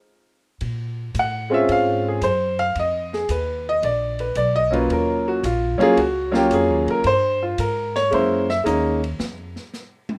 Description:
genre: jazz piano trio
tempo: 112 BPM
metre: 4/4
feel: swing 69% on 8ths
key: Bb minor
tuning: A4 = 441 Hz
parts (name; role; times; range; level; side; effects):
- upright bass; bass; 0.6-9.6 s; Bb1 to Bb2; -30 LUFS; equal; none
- open jazz drum kit; drums; 0.6-10.2 s; hi-hat, kick drum, ride cymbal, snare drum, toms; -38 LUFS; equal; none
- clear upright piano; melody; 1.2-9.0 s; Gb3 to Gb5; -21 LUFS; equal; none
room: moderate small room reverb, RT60 0.5 s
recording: rough home demo mix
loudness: -21 LUFS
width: mono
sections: 0.6-10.2 A section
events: break 0.0-0.6; upright piano solo 0.6-10.2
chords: 0.0 N.C.; 0.6 Bbm9; 2.8 Abm6 (rootless); 3.8 Bb5; 4.9 Ebm9; 7.0 Bb7sus2/G; 8.1 Gb9; 9.2 N.C.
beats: 0.07 | 0.61 1.14 1.68 2.21 | 2.75 3.29 3.83 4.36 | 4.90 5.44 5.97 6.51 | 7.05 7.59 8.12 8.66 | 9.20 9.74

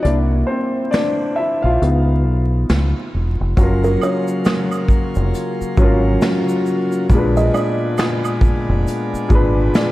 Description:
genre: lo-fi hip hop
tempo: 68 BPM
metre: 4/4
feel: swing 60% on 16ths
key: F# major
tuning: A4 = 442 Hz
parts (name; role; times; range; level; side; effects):
- felt-muted upright piano; accompaniment; 0.0-9.9 s; A#2 to E#5; -19 LUFS; left 1 dB; cassette tape
- deep dub fingered electric bass; bass; 0.0-9.7 s; E1 to C#2; -17 LUFS; equal; none
- vintage brush drum kit; drums; 0.0-9.9 s; hi-hat, kick drum, shaker, snare drum; -18 LUFS; equal; none
- pipe organ, plenum; sustained chords; 3.6-9.9 s; A#2 to E#4; -24 LUFS; left 1 dB; none
- egg shaker and woodblock; percussion; 3.6-9.9 s; none; -31 LUFS; right 5 dB; none
- buzzing kalimba; melody; 3.8-9.9 s; A#4 to D#5; -25 LUFS; right 3 dB; diffuse ambient delay
room: moderate plate reverb, RT60 3.3 s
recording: dreamy mix soaked in reverb, vinyl crackle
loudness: -15 LUFS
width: side -17 dB against mid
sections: 0.0-3.6 A section; 3.6-9.9 B section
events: felt piano solo 0.0-3.6; break 0.0-3.6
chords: 0.0 C9; 1.8 C#7; 3.6 F#maj7; 7.1 A#7b9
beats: | 0.04 0.92 1.80 2.69 | 3.57 4.45 5.33 6.22 | 7.10 7.98 8.86 9.74

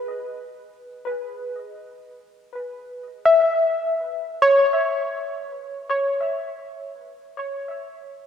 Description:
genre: ambient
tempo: free time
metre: none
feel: none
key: C# minor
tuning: A4 = 440 Hz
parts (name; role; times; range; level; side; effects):
- soft round pluck; solo; 0.0-7.3 s; B4 to E5; -21 LUFS; left 1 dB; analog chorus, analog delay
room: wet lush hall reverb, RT60 2.7 s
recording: dreamy mix soaked in reverb, cassette tape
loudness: -20 LUFS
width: side -8 dB against mid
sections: 0.0-8.3 A section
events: none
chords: none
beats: free time

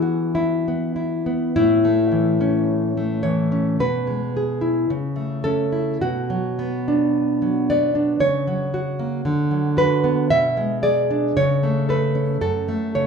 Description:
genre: romantic piece for solo classical guitar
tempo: 49-58 BPM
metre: 2/4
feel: rubato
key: A major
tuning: A4 = 442 Hz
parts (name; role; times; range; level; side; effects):
- nylon-string guitar; solo; 0.0-13.1 s; F#2 to E5; -18 LUFS; equal; none
room: moderate recital hall reverb, RT60 1.7 s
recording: minimal, uncompressed stereo recording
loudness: -18 LUFS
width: side -6 dB against mid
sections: 0.0-1.6 A section; 1.6-13.1 B section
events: none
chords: 0.0 E; 1.6 A; 3.8 E/B; 4.9 A/C#; 6.0 Bm; 8.2 F#/C#; 9.3 Bm/D; 10.3 E7/B; 11.4 A/C#; 12.4 F#m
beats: 0.36 | 1.55 2.69 | 3.81 4.91 | 6.02 7.13 | 8.21 9.25 | 10.31 11.37 | 12.41

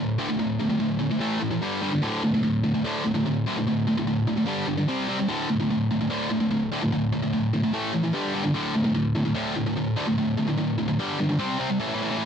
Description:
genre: metal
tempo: 147 BPM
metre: 4/4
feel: straight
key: unclear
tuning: A4 = 440 Hz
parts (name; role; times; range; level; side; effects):
- high-gain distorted guitar; solo; 0.0-12.3 s; D2 to C4; -23 LUFS; equal; distortion
room: little or no reverb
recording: dry, close 1970s-style studio recording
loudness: -23 LUFS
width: side -8 dB against mid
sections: 0.0-11.8 A section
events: none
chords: 0.0 D5; 1.2 A5; 1.6 G5; 2.0 D5; 4.5 G5; 4.9 C5; 5.3 D5; 7.7 A5; 8.1 G5; 8.5 D5; 11.0 G5; 11.4 C5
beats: 0.00 | 0.40 0.81 1.22 1.63 | 2.03 2.44 2.85 3.26 | 3.66 4.07 4.48 4.88 | 5.29 5.70 6.11 6.51 | 6.92 7.33 7.74 8.14 | 8.55 8.96 9.36 9.77 | 10.18 10.58 10.99 11.40 | 11.80 12.21

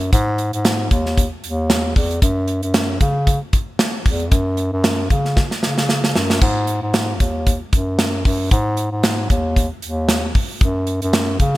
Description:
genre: piano-driven pop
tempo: 114 BPM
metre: 4/4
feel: swing 56% on 16ths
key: unclear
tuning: A4 = 445 Hz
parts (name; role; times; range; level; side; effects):
- mellow bass clarinet; bass; 0.0-11.6 s; D#2 to C#3; -20 LUFS; equal; none
- modern studio drum kit; drums; 0.0-11.6 s; hi-hat, kick drum, snare drum, splash cymbal; -17 LUFS; equal; gated reverb
room: light reverb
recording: bright 1980s-style digital production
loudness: -16 LUFS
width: side -17 dB against mid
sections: 0.0-11.6 A section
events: drum fill 5.4-6.4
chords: none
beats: | 0.13 0.65 1.17 1.70 | 2.22 2.75 3.27 3.79 | 4.32 4.84 5.37 5.89 | 6.42 6.94 7.47 7.99 | 8.52 9.04 9.56 10.09 | 10.61 11.14

